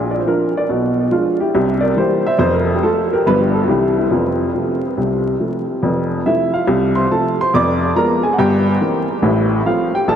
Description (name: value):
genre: jazz, stride piano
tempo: 141 BPM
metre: 4/4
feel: swing 63% on 8ths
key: F major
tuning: A4 = 439 Hz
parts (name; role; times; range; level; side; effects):
- warm upright piano; solo; 0.0-10.2 s; F1 to D6; -14 LUFS; equal; tape echo
room: wet huge ambient reverb, RT60 7.0 s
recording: dreamy mix soaked in reverb, vinyl crackle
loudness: -14 LUFS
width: side -8 dB against mid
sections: 0.0-5.8 A section; 5.8-10.2 A section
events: none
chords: 0.0 Bb; 0.7 Bdim7; 1.6 C7; 2.4 F; 3.3 G5; 3.7 C; 4.1 F; 7.5 Fdim7; 8.4 C7/G; 9.2 F/A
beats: 0.27 | 0.70 1.12 1.55 1.98 | 2.40 2.83 3.26 3.69 | 4.11 4.54 4.97 5.39 | 5.82 6.25 6.67 7.10 | 7.53 7.95 8.38 8.81 | 9.23 9.66 10.09